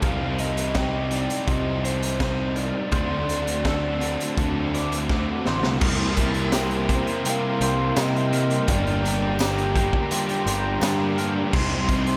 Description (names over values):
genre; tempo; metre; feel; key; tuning
rock, shoegaze and dream pop; 84 BPM; 4/4; straight; unclear; A4 = 440 Hz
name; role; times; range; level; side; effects
clean electric guitar; arpeggios; 0.0-12.2 s; F4 to D5; -36 LUFS; equal; analog chorus, diffuse ambient delay
crunchy overdriven guitar; riff; 0.0-12.2 s; G2 to F#4; -32 LUFS; equal; ensemble chorus
overdriven semi-hollow guitar; riff; 0.0-12.2 s; G2 to F#4; -33 LUFS; equal; none
sludgy distorted guitar; riff; 0.0-12.2 s; G2 to D4; -36 LUFS; equal; none
fuzz picked electric bass; bass; 0.0-12.2 s; G1 to C3; -29 LUFS; equal; overdrive
raw garage drum kit; drums; 0.0-12.2 s; crash cymbal, hi-hat, kick drum, snare drum; -29 LUFS; equal; none
reedy FM lead; melody; 0.1-9.7 s; C5 to F5; -34 LUFS; equal; chorus, diffuse ambient delay
warm analog pad; sustained chords; 5.8-12.2 s; Eb4 to C6; -32 LUFS; equal; chorus
tambourine; percussion; 6.5-11.0 s; none; -42 LUFS; equal; none
room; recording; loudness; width
wet lush hall reverb, RT60 2.8 s; dreamy mix soaked in reverb; -23 LUFS; mono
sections
0.0-5.8 A section; 5.8-12.2 B section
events
drum fill 5.1-5.8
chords
0.0 Cm7; 2.9 D5; 5.8 C7sus4; 8.7 Gm7; 11.5 Cm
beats
| 0.04 0.76 1.48 2.21 | 2.93 3.65 4.37 5.09 | 5.81 6.53 7.25 7.97 | 8.68 9.40 10.11 10.82 | 11.53